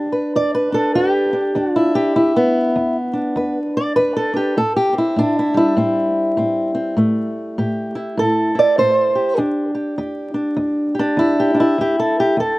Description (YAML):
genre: acoustic country blues, solo or duo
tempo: 100 BPM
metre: 4/4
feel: swing 61% on 8ths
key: E minor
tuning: A4 = 440 Hz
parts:
  - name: fingerpicked old ladder-braced acoustic guitar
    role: solo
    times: 0.0-12.6 s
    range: E2 to D5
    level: -15 LUFS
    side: equal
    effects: none
room: little or no reverb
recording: recorded outdoors, with no room sound, vinyl crackle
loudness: -15 LUFS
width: side -19 dB against mid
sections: 0.0-12.6 A section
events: none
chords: 0.0 Em7; 4.6 Am7; 9.4 Em7